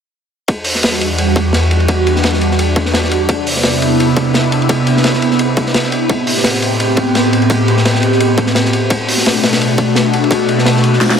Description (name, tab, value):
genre	liquid drum and bass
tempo	171 BPM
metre	4/4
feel	swing 54% on 16ths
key	E minor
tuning	A4 = 439 Hz
part	airy breathy pad	sustained chords	0.7-11.2 s	E2 to G4	-13 LUFS	equal	chorus, phaser
part	crunchy breakbeat drum kit	drums	0.5-11.1 s	hi-hat, ride cymbal, snare drum	-16 LUFS	equal	high-pass filter on cymbals, high-pass filter on hats, high-pass filter on snare, high-pass filter on room
part	electronic kick drum	drums	0.5-10.4 s	none	-15 LUFS	equal	overdrive, high-pass filter on kick
part	electronic snare drum	drums	11.0-11.2 s	none	-11 LUFS	right 1 dB	overdrive
room	light reverb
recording	none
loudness	-11 LUFS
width	side -7 dB against mid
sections	0.5-11.2 A section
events	drum fill 11.0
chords	0.5 Em9; 3.3 Cmaj9; 6.1 Am9; 8.9 Bm7